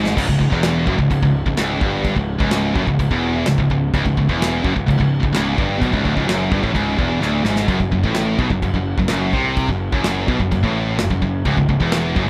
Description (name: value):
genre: heavy metal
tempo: 128 BPM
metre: 4/4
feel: straight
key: C# phrygian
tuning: A4 = 440 Hz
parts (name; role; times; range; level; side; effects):
- high-gain distorted guitar; riff; 0.0-12.3 s; C#2 to C3; -23 LUFS; equal; distortion
- high-gain distorted guitar; riff; 0.0-12.3 s; C#2 to C3; -24 LUFS; equal; distortion
- fuzz picked electric bass; bass; 0.0-12.3 s; C#1 to C2; -26 LUFS; equal; overdrive
- modern studio drum kit; drums; 0.1-12.3 s; crash cymbal, kick drum, snare drum; -25 LUFS; equal; none
room: light reverb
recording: rough home demo mix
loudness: -18 LUFS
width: mono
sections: 0.2-12.3 A section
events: drum fill 0.0, 7.2-7.7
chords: 0.2 C#m; 7.7 F#dim; 11.4 C#m